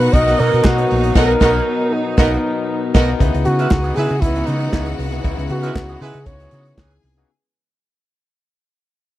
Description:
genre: disco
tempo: 117 BPM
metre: 4/4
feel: straight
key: C# dorian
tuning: A4 = 440 Hz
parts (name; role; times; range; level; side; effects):
- breathy flugelhorn; melody; 0.0-7.0 s; D#4 to D#5; -20 LUFS; equal; none
- clear studio string section; second line; 0.0-7.3 s; F#4 to G#5; -28 LUFS; left 3 dB; none
- barky tine electric piano; accompaniment; 0.0-7.3 s; B2 to C#5; -24 LUFS; moving between left 10 dB and left 4 dB; overdrive, auto-pan
- electric guitar at the edge of break-up; accompaniment; 0.0-7.3 s; E3 to A#4; -32 LUFS; right 6 dB; wah
- clear studio string section; sustained chords; 0.0-7.3 s; C#3 to D#5; -27 LUFS; right 3 dB; none
- hollow-body short-scale fingered electric bass; bass; 0.0-7.2 s; A#1 to C#3; -20 LUFS; equal; none
- warm soul drum kit; drums; 0.0-7.3 s; crash cymbal, hi-hat, kick drum, snare drum; -16 LUFS; equal; none
- warm horn section; stabs; 0.1-6.2 s; G#3 to D#5; -23 LUFS; right 5 dB; tape echo
- group handclap; percussion; 0.6-6.9 s; none; -34 LUFS; left 4 dB; none
room: little or no reverb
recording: none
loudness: -14 LUFS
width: side -14 dB against mid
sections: 0.0-3.2 A section; 3.2-7.3 B section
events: band accent 1.2-3.2; fade-out 3.2-7.3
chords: 0.0 Bmaj7; 3.2 C#m9

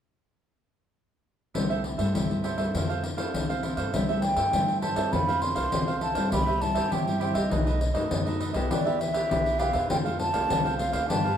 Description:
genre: samba and choro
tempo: 101 BPM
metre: 4/4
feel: straight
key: C major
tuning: A4 = 440 Hz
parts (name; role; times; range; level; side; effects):
- cavaquinho; accompaniment; 1.5-11.4 s; D4 to F5; -32 LUFS; right 5 dB; none
- nylon-string guitar; accompaniment; 1.5-11.4 s; F#2 to A4; -32 LUFS; left 2 dB; none
- upright bass; bass; 1.5-11.4 s; B1 to G2; -33 LUFS; equal; none
- pandeiro; percussion; 1.6-11.4 s; none; -30 LUFS; left 2 dB; none
- breathy mellow concert flute; melody; 3.9-11.4 s; D5 to C6; -28 LUFS; equal; none
room: wet large studio reverb, RT60 1.2 s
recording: band playing live in one room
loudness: -24 LUFS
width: side -9 dB against mid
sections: 1.6-3.9 A section; 3.9-11.4 B section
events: none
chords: 1.6 C6; 2.7 Fmaj7; 3.9 C6; 5.1 Fmaj7; 6.3 C; 7.5 B7; 8.7 Em; 9.9 F

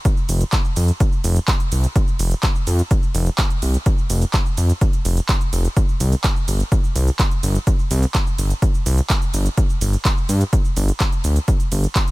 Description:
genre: EDM, festival progressive house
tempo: 126 BPM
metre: 4/4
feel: straight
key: unclear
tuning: A4 = 440 Hz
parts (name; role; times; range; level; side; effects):
- big-room dance drum kit; drums; 0.1-12.1 s; handclaps, hi-hat, ride cymbal, shaker; -26 LUFS; right 1 dB; none
- electronic kick drum; drums; 0.1-12.1 s; none; -18 LUFS; equal; none
- fat analog bass; bass; 0.3-11.9 s; F1 to G2; -17 LUFS; equal; sidechain pumping
room: little or no reverb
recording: none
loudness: -16 LUFS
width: side -20 dB against mid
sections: 0.0-12.1 A section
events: none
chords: none

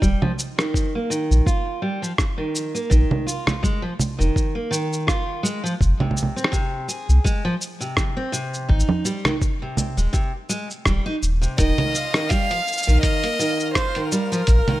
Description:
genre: folktronica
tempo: 83 BPM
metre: 4/4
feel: swing 56% on 16ths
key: Eb major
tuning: A4 = 440 Hz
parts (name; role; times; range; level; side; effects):
- picked steel-string acoustic guitar; arpeggios; 0.0-14.8 s; C3 to Ab4; -25 LUFS; right 1 dB; low-pass filter, digital delay
- warm sub bass; bass; 0.0-14.6 s; Eb1 to C2; -17 LUFS; equal; tube saturation
- electronic kick drum; drums; 0.0-14.6 s; none; -22 LUFS; equal; none
- lo-fi sampler-style drum kit; drums; 0.0-14.8 s; congas, hi-hat, rim click, shaker; -24 LUFS; right 1 dB; none
- rich violin; melody; 11.6-14.8 s; Bb4 to F5; -24 LUFS; equal; none
- twinkling granular texture; texture; 11.9-14.8 s; F5 to F6; -34 LUFS; right 1 dB; built-in reverb
room: little or no reverb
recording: none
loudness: -19 LUFS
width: side -16 dB against mid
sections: 0.0-14.8 A section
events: none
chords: 0.0 Ebadd9; 2.9 Bb7sus4 (rootless); 5.8 Fm (rootless); 8.7 Abmaj7; 11.6 Ebadd9

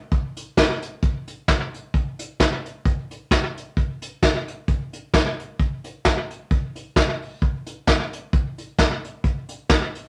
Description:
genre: ska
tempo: 132 BPM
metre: 4/4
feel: swing 55% on 8ths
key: none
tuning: none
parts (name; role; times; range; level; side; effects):
- vintage brush drum kit; drums; 0.1-10.0 s; hi-hat, kick drum, snare drum; -22 LUFS; equal; slapback echo
room: moderate club reverb, RT60 0.6 s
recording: none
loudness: -24 LUFS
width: mono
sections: 0.0-10.1 A section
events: none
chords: none

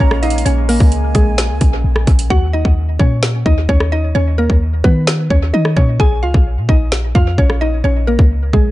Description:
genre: hip hop, trap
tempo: 130 BPM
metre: 4/4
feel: half-time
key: unclear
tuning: A4 = 443 Hz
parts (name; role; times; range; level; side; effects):
- mallet-like synth pluck; melody; 0.0-8.7 s; Ab3 to Ab5; -19 LUFS; equal; chorus, dub echo
- breathy concert flute; second line; 0.0-2.3 s; F5 to Bb5; -28 LUFS; right 6 dB; dub echo
- deep dark ambient pad; sustained chords; 0.0-2.3 s; Ab3 to Db4; -27 LUFS; right 2 dB; chorus, built-in reverb
- clean 808-style bass; bass; 0.0-8.7 s; Bb1 to Eb3; -15 LUFS; equal; none
- trap drum kit; drums; 0.0-8.6 s; hi-hat, kick drum, rim click, snare drum; -14 LUFS; equal; none
room: little or no reverb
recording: echo-heavy mix, nothing above 10.8 kHz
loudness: -11 LUFS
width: side -16 dB against mid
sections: 0.0-2.3 A section; 2.3-8.7 B section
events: hi-hats muted 2.3-8.7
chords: 0.0 Bbm7; 2.3 Eb7(no3); 6.0 Bbm7

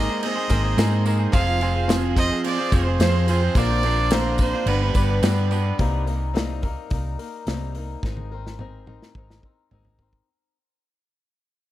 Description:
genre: folk rock and heartland rock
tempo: 108 BPM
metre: 4/4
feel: straight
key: unclear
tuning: A4 = 440 Hz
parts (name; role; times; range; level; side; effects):
- clear fiddle; melody; 0.0-5.5 s; B4 to F5; -26 LUFS; right 3 dB; analog delay
- picked swing-style acoustic guitar; accompaniment; 0.0-10.3 s; G2 to B4; -30 LUFS; left 6 dB; analog delay
- twelve-string electric guitar; riff; 0.0-5.8 s; F3 to C5; -27 LUFS; right 4 dB; analog delay
- hollow-body short-scale fingered electric bass; bass; 0.0-10.2 s; F1 to Ab2; -23 LUFS; equal; none
- natural country drum kit; drums; 0.2-10.3 s; crash cymbal, hi-hat, kick drum, snare drum, toms; -24 LUFS; equal; none
- tambourine; percussion; 0.2-5.6 s; none; -41 LUFS; left 6 dB; analog delay
room: light reverb, studio reverb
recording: echo-heavy mix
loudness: -19 LUFS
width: side -14 dB against mid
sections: 0.0-5.8 A section; 5.8-10.3 B section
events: fade-out 5.8-10.3; drum fill 8.0-10.3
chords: 0.0 Abadd9; 1.3 Fm; 3.6 Bbadd9; 4.7 G; 5.8 Cm7; 8.0 Abadd9

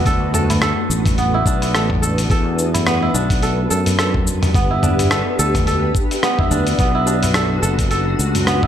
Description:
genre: organic downtempo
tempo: 107 BPM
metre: 4/4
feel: swing 57% on 16ths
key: unclear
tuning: A4 = 440 Hz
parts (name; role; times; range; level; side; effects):
- granular cloud pad; sustained chords; 0.0-8.7 s; A3 to B4; -23 LUFS; left 1 dB; built-in reverb, ensemble chorus, sidechain pumping
- kora; arpeggios; 0.0-8.7 s; B3 to A4; -21 LUFS; right 2 dB; digital delay
- sustaining fretless electric bass; bass; 0.1-8.7 s; F#1 to F#2; -20 LUFS; equal; none
- dusty soul sampler-style drum kit; drums; 0.1-8.7 s; hi-hat, rim click, shaker, toms; -21 LUFS; equal; none
- electronic kick drum; drums; 0.1-8.7 s; none; -19 LUFS; equal; none
- tabla; percussion; 0.1-8.4 s; none; -27 LUFS; equal; none
room: light reverb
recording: bright 1980s-style digital production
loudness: -15 LUFS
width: side -10 dB against mid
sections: 0.0-8.7 A section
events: none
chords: 0.1 D6; 2.3 Em7; 4.5 Gmaj7; 6.8 Bm7

